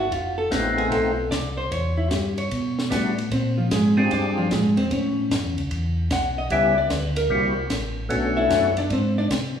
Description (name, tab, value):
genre	soul jazz organ trio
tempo	150 BPM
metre	4/4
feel	swing 66% on 8ths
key	unclear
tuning	A4 = 443 Hz
part	hollow-body jazz guitar	accompaniment	0.0-9.3 s	E#3 to F#5	-23 LUFS	equal	none
part	mellow tonewheel organ	bass	0.0-9.6 s	F1 to B#2	-26 LUFS	equal	slow rotary speaker
part	compact cocktail drum kit	drums	0.1-9.4 s	hi-hat, kick drum, ride cymbal, snare drum	-30 LUFS	equal	none
part	percussive tonewheel organ	melody	0.5-8.7 s	G3 to G#4	-25 LUFS	left 1 dB	slow rotary speaker, chorus vibrato
room	wet large studio reverb, RT60 1.3 s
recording	heard from further back in the room, studio reverb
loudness	-20 LUFS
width	side -8 dB against mid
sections	0.0-9.6 A section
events	hollow-body jazz guitar solo 0.0-9.6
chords	0.1 F7#11; 1.7 Em7; 3.3 A#13; 4.9 Aadd9; 6.5 C#m7b5; 7.3 C7#11; 8.1 Bm9; 8.9 G#